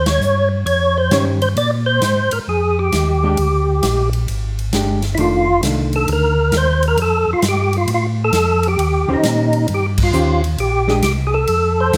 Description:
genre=soul jazz organ trio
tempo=133 BPM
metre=4/4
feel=swing 67% on 8ths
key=unclear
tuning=A4 = 440 Hz
part: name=percussive tonewheel organ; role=melody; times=0.0-12.0 s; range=Eb4 to D5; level=-19 LUFS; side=equal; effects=slow rotary speaker, overdrive, chorus vibrato
part: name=mellow tonewheel organ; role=bass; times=0.0-12.0 s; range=F1 to Bb2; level=-21 LUFS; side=equal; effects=chorus vibrato, slow rotary speaker
part: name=swinging big-band drum kit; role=drums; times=0.1-12.0 s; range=crash cymbal, hi-hat, kick drum, ride cymbal, snare drum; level=-27 LUFS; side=equal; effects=none
part: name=hollow-body jazz guitar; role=accompaniment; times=1.1-6.3, 9.1-11.0 s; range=Eb3 to C5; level=-24 LUFS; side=equal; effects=none
room=moderate large studio reverb, RT60 1.3 s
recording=none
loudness=-17 LUFS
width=mono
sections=0.0-12.0 A section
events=band accent 0.0, 9.9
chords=0.0 Eb13; 1.6 Bb13; 5.2 F13; 8.8 Eb13; 10.6 Bb13

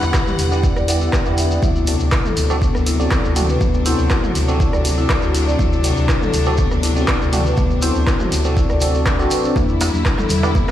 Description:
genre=afro house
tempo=121 BPM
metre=4/4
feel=straight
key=unclear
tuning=A4 = 440 Hz
part: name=rich studio string section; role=sustained chords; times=0.0-10.7 s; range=C3 to F#5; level=-25 LUFS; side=left 3 dB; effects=sidechain pumping
part: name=bell-like tine electric piano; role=stabs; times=0.0-10.5 s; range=B3 to D5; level=-24 LUFS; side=right 2 dB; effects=phaser, sidechain pumping, ping-pong delay
part: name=warm sub bass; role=bass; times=0.0-10.7 s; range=A1 to E2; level=-20 LUFS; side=equal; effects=sidechain pumping
part: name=deep house drum kit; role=drums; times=0.0-10.7 s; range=handclaps, hi-hat, rim click, toms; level=-24 LUFS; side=right 1 dB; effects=overdrive
part: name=shekere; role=percussion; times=0.0-10.7 s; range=none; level=-30 LUFS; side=equal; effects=none
part: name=marimba with medium mallets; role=arpeggios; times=0.1-10.6 s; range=B3 to E5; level=-23 LUFS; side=left 4 dB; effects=sidechain pumping, ping-pong delay
part: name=electronic kick drum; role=drums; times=0.1-10.7 s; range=none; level=-19 LUFS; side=equal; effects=none
part: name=congas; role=percussion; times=9.6-10.7 s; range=none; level=-25 LUFS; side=left 2 dB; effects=none
part: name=darbuka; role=percussion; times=9.6-10.7 s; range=none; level=-29 LUFS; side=right 2 dB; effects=none
room=light reverb, small room ambience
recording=played on a big sound system in a bare room, stone room reverb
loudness=-15 LUFS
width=side -12 dB against mid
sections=0.0-10.7 A section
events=none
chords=0.0 Em7; 1.6 D7; 9.6 Em7

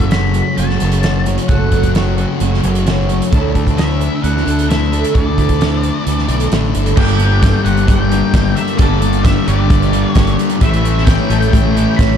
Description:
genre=rock, shoegaze and dream pop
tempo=132 BPM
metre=4/4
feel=straight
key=unclear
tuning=A4 = 439 Hz
part: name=octave-fuzz lead guitar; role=melody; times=0.0-12.2 s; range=D5 to B5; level=-24 LUFS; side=left 4 dB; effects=distortion, tape echo
part: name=picked twelve-string acoustic guitar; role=arpeggios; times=0.0-12.2 s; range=F#4 to C#5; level=-25 LUFS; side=right 5 dB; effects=ensemble chorus, tape echo
part: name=crunchy overdriven guitar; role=riff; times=0.0-12.2 s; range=F#2 to G4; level=-22 LUFS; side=right 11 dB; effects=reverse reverb
part: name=thick fuzz guitar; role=riff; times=0.0-12.2 s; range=F#2 to D4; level=-19 LUFS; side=left 11 dB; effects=distortion, lush chorus
part: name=fuzz fingered electric bass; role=bass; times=0.0-12.2 s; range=F#1 to D2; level=-16 LUFS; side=equal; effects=overdrive
part: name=loose indie drum kit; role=drums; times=0.0-12.1 s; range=crash cymbal, hi-hat, kick drum, snare drum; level=-16 LUFS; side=right 1 dB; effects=none
part: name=raw garage guitar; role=riff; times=7.0-12.2 s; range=G2 to A3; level=-20 LUFS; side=equal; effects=overdrive
room=small room ambience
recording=dark, warm production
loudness=-11 LUFS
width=side -8 dB against mid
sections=0.0-7.0 A section; 7.0-12.2 B section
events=none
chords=0.0 F#m; 3.3 Dsus2; 7.0 Gmadd9; 10.6 A7

